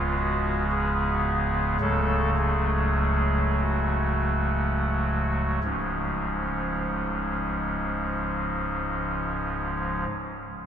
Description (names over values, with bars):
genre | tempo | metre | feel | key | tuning
classical, chorale-style piece for pipe organ | 42-58 BPM | 3/4 | rubato | Db major | A4 = 440 Hz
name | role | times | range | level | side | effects
pipe organ, soft reed | solo | 0.0-10.1 s | Db1 to A4 | -24 LUFS | equal | none
room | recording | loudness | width
wet cathedral reverb, RT60 6.0 s | recorded in a church or concert hall | -24 LUFS | side -8 dB against mid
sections
0.0-5.6 A section; 5.6-9.8 B section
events
slowing down 0.0-5.6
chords
0.0 Db7(no3); 1.8 Gbm/Db; 5.6 Db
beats
0.72 | 1.81 2.98 4.25 | 5.64 7.03 8.43